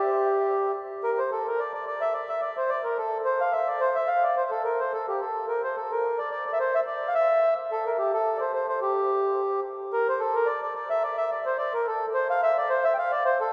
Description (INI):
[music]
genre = celtic folk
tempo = 216 BPM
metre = 4/4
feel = swing 54% on 8ths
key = G dorian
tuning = A4 = 441 Hz
[part]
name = mellow accordion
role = solo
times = 0.0-13.5 s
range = G4 to G5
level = -26 LUFS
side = equal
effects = none
[sound]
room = wet cathedral reverb, RT60 5.1 s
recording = in a vast, echoing space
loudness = -26 LUFS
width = mono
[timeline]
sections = 0.0-1.0 A section; 1.0-9.9 B section; 9.9-13.5 B section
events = none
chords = none